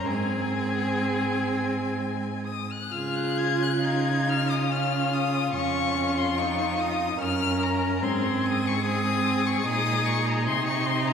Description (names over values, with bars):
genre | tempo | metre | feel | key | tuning
classical, slow romantic movement for string quartet | 62-75 BPM | 3/4 | rubato | Db major | A4 = 440 Hz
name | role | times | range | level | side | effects
warm violin | melody | 0.0-11.1 s | Ab5 to Ab6 | -29 LUFS | left 6 dB | none
warm violin | second line | 0.0-11.1 s | F4 to Bb4 | -31 LUFS | left 3 dB | none
rich viola | accompaniment | 0.0-11.1 s | C4 to F4 | -28 LUFS | right 2 dB | none
dark cello | bass | 0.0-11.1 s | F2 to Db3 | -28 LUFS | right 2 dB | none
room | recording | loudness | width
wet church reverb, RT60 2.9 s | none | -23 LUFS | side -7 dB against mid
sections
0.0-2.9 A section; 2.9-11.1 B section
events
none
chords
0.1 Ab; 2.9 Db; 5.5 Db/F; 8.0 Ab; 10.5 Ab/C